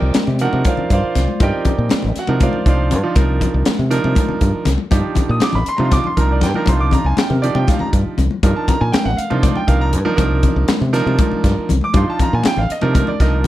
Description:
electric jazz fusion; 239 BPM (eighths); 7/8; straight; C minor; A4 = 440 Hz
clear concert grand piano; accompaniment; 0.0-13.5 s; F3 to Eb6; -20 LUFS; right 3 dB
fingered electric bass; bass; 0.0-13.5 s; Bb1 to C3; -17 LUFS; equal
congas; percussion; 0.0-13.5 s; -23 LUFS; left 6 dB
crisp fusion drum kit; drums; 0.1-13.3 s; hi-hat, kick drum, snare drum; -18 LUFS; equal
light reverb; dark, warm production; -14 LUFS; side -14 dB against mid
0.0-13.5 A section
0.0 Cm11

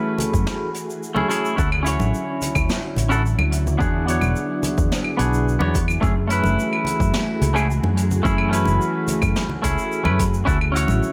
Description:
sunset chillout; 108 BPM; 4/4; straight; F# minor; A4 = 440 Hz
semi-hollow electric guitar; accompaniment; 0.0-11.1 s; A3 to C#5; -26 LUFS; equal; digital delay
soft string machine; sustained chords; 0.0-11.1 s; D3 to G#4; -30 LUFS; equal; ensemble chorus, vintage 12-bit sampler grit
jazz brush drum kit; drums; 0.2-11.1 s; claves, hi-hat, shaker, snare drum; -30 LUFS; equal
congas; percussion; 0.2-11.0 s; -31 LUFS; equal
fretless electric bass; bass; 0.3-11.0 s; E1 to F#2; -23 LUFS; equal; ensemble chorus
electronic kick drum; drums; 0.3-10.6 s; -26 LUFS; equal
light reverb, studio reverb; -21 LUFS; mono
0.0-11.1 A section
break 0.5-1.6
0.0 F#m9; 1.6 Dmaj9; 3.8 E9; 6.0 F#m9; 10.5 Dmaj9

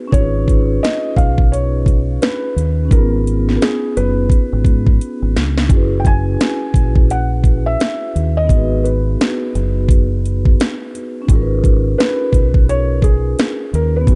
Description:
lo-fi hip hop; 86 BPM; 4/4; swing 61% on 16ths; A4 = 442 Hz
vibraphone with soft mallets; accompaniment; 0.0-14.2 s; B3 to B4; -24 LUFS; equal; cassette tape, low-pass filter
felt-muted upright piano; melody; 0.1-14.2 s; G#4 to G#5; -25 LUFS; equal; low-pass filter
deep dub fingered electric bass; bass; 0.1-14.2 s; F#1 to G#2; -19 LUFS; equal
drum and bass drum kit; drums; 0.1-14.2 s; hi-hat, kick drum, snare drum; -16 LUFS; equal
little or no reverb; dark, warm production, nothing above 10.9 kHz; -15 LUFS; mono
0.0-14.2 A section
drum fill 5.0-5.7
0.1 C#7/G#; 5.7 F#7sus4; 8.5 G#m7; 11.3 C#7/G#

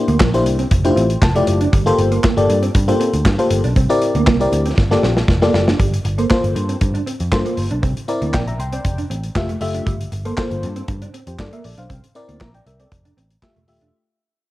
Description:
early-eighties boogie funk; 118 BPM; 4/4; straight; G dorian; A4 = 440 Hz
FM electric piano with soft pad layer; accompaniment; 0.0-13.9 s; A3 to C6; -19 LUFS; left 2 dB; chorus, cassette tape
mellow electric guitar; riff; 0.1-13.9 s; G3 to D4; -25 LUFS; right 4 dB; ensemble chorus, cassette tape
vintage muted picked electric bass; bass; 0.1-13.9 s; Eb1 to G2; -20 LUFS; equal
modern studio drum kit; drums; 0.1-13.9 s; handclaps, hi-hat, kick drum, snare drum; -19 LUFS; equal; cassette tape
light reverb; home recording on cassette; -15 LUFS; side -16 dB against mid
0.0-5.8 A section; 5.8-13.9 B section
FM electric piano fill 1.0-1.7; drum fill 4.8-5.8; fade-out 5.8-13.9
0.0 C9; 0.7 Fmaj9; 1.7 Gm11; 3.8 C9; 4.8 Gm9; 5.8 Gm11; 7.8 C9; 8.8 Fmaj9; 9.9 Gm11; 11.9 C9; 12.9 Fmaj9

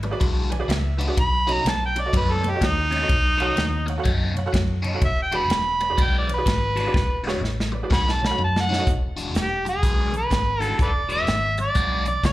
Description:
electric blues shuffle; 125 BPM; 4/4; swing 63% on 8ths; E mixolydian; A4 = 438 Hz
honky-tonk upright piano; accompaniment; 0.0-8.9 s; F#4 to G#5; -31 LUFS; right 3 dB; slapback echo
biting overdriven guitar; riff; 0.0-12.3 s; B2 to F#4; -30 LUFS; left 3 dB; phaser, slapback echo
vintage muted fingered electric bass; bass; 0.0-12.3 s; E1 to F#2; -26 LUFS; equal
natural country drum kit; drums; 0.0-12.3 s; hi-hat, kick drum, ride cymbal, snare drum; -24 LUFS; equal
overdriven harmonica; melody; 1.2-12.3 s; D#4 to B5; -24 LUFS; right 1 dB; slapback echo
small room ambience; live gig heard through the venue's PA, club reverb; -20 LUFS; side -16 dB against mid
0.0-8.9 A section; 8.9-12.3 B section
harmonica solo 0.0-8.9; honky-tonk piano fill 0.2-1.2; drum fill 6.9-8.9
0.0 E9; 1.2 B9; 5.0 E9; 7.9 B9; 8.9 E9

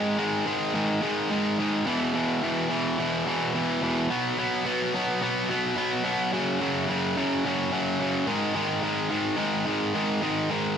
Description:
rock; 108 BPM; 4/4; straight; G# minor; A4 = 440 Hz
distorted electric guitar; solo; 0.0-10.8 s; E2 to B3; -24 LUFS; equal; overdrive
light reverb; -24 LUFS; side -8 dB against mid
0.0-10.8 A section
0.0 G#5; 1.9 E5; 4.1 B5; 6.3 F#5; 8.3 G#5

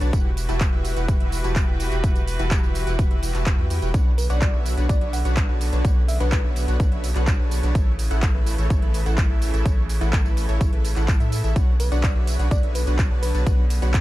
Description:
EDM, festival progressive house; 126 BPM; 4/4; straight; B minor; A4 = 440 Hz
rich chamber string section; sustained chords; 0.0-14.0 s; C#3 to B4; -34 LUFS; equal; sidechain pumping
dense compressed supersaw; riff; 0.0-14.0 s; D4 to A5; -30 LUFS; equal; sidechain pumping, digital delay
saturated sub bass; bass; 0.0-14.0 s; E1 to A2; -23 LUFS; equal; sidechain pumping
big-room dance drum kit; drums; 0.0-14.0 s; handclaps, hi-hat, ride cymbal, tambourine; -32 LUFS; right 1 dB; overdrive
electronic kick drum; drums; 0.1-14.0 s; -20 LUFS; equal; overdrive
bell-like FM electric piano; melody; 4.2-6.7, 11.8-13.9 s; B4 to F#5; -33 LUFS; left 1 dB; chorus, digital delay
little or no reverb; dark, warm production; -19 LUFS; side -16 dB against mid
0.0-14.0 A section
0.1 Emadd9; 3.9 Bmadd9; 7.8 A; 11.6 Bmadd9

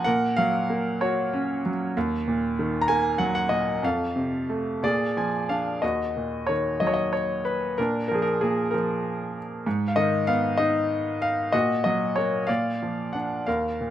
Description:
classical, lyrical solo piano; 59-65 BPM (dotted quarters); 6/8; rubato; Bb minor, Eb minor from 5.8 s; A4 = 440 Hz
bright baby grand piano; solo; 0.0-13.9 s; Eb2 to Bb5; -23 LUFS; equal
light reverb; close, detailed microphones; -23 LUFS; side -11 dB against mid
0.0-5.8 A section; 5.8-13.9 B section
grand piano fill 4.8-5.8
0.1 Gb/Bb; 2.0 Ebm; 3.8 F; 4.8 Bb7; 5.8 Ebm; 7.8 Bb; 9.7 Abm; 11.5 Gb6/Bb; 12.5 Bb

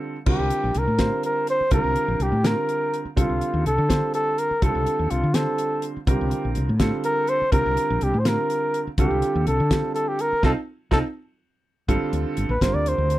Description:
electric jazz fusion; 83 BPM (dotted quarters); 6/8; straight; A4 = 440 Hz
trumpet with bucket mute; melody; 0.0-13.2 s; F4 to D5; -23 LUFS; equal; slapback echo
warm baby grand piano; accompaniment; 0.0-13.2 s; D3 to C5; -27 LUFS; right 4 dB
woody fretless electric bass; bass; 0.3-13.2 s; G1 to D3; -24 LUFS; equal
damped 70s drum kit; drums; 0.3-13.2 s; crash cymbal, hi-hat, kick drum, snare drum; -24 LUFS; left 1 dB
little or no reverb; dry, close 1970s-style studio recording; -20 LUFS; side -15 dB against mid
0.3-11.9 A section; 11.9-13.2 B section
break 0.0; band accent 10.4-11.9; drum fill 11.7; muted trumpet solo 11.9-13.2
0.0 Bbmaj9; 3.2 Fadd9/C; 6.1 Csus2; 9.0 Fadd9/C; 11.9 Gm11

